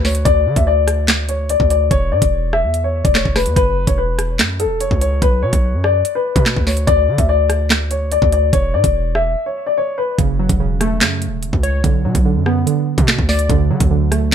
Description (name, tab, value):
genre	hip hop, drill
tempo	145 BPM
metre	4/4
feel	half-time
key	F# minor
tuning	A4 = 440 Hz
part	dark upright piano	melody	0.0-10.2 s	A4 to E5	-18 LUFS	left 5 dB	low-pass filter, plate reverb, digital delay
part	hard-hitting 808-style bass	bass	0.0-14.3 s	E1 to D3	-18 LUFS	equal	none
part	drill drum kit	drums	0.0-14.3 s	handclaps, hi-hat, kick drum, rim click, snare drum	-17 LUFS	equal	none
part	warbly dusty pluck	accompaniment	10.2-14.3 s	C#3 to D5	-18 LUFS	right 5 dB	chorus, low-pass filter
room	moderate studio reverb, RT60 0.6 s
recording	none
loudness	-13 LUFS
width	side -8 dB against mid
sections	0.0-14.3 A section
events	break 9.4-10.2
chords	0.3 N.C.; 3.6 F#5; 5.2 Bm; 6.9 N.C.; 10.2 F#m; 11.8 Bm; 13.5 D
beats	| 0.25 0.67 1.08 1.50 | 1.91 2.32 2.74 3.15 | 3.56 3.98 4.39 4.81 | 5.22 5.63 6.05 6.46 | 6.88 7.29 7.70 8.12 | 8.53 8.94 9.36 9.77 | 10.19 10.60 11.01 11.43 | 11.84 12.25 12.67 13.08 | 13.50 13.91 14.32